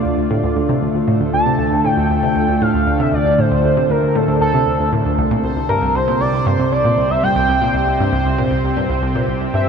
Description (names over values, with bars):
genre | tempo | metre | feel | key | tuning
ambient, sequencer-driven space music | 117 BPM | 4/4 | straight | D minor | A4 = 440 Hz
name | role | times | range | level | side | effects
pulse-width lead | melody | 0.0-9.7 s | A4 to A5 | -18 LUFS | equal | chorus, analog delay
lush unison pad | sustained chords | 0.0-9.7 s | C3 to D5 | -19 LUFS | equal | chorus
analog pluck | riff | 0.0-9.7 s | C2 to C3 | -19 LUFS | equal | chorus, phaser, analog delay
bubbling stepped-filter texture | texture | 0.0-9.7 s | C5 | -36 LUFS | right 7 dB | chorus, built-in reverb
room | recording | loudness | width
wet huge ambient reverb, RT60 8.0 s | none | -14 LUFS | side -6 dB against mid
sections
0.0-9.7 A section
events
fade-in on synth texture 0.0-9.7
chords
0.0 Dm; 5.2 C5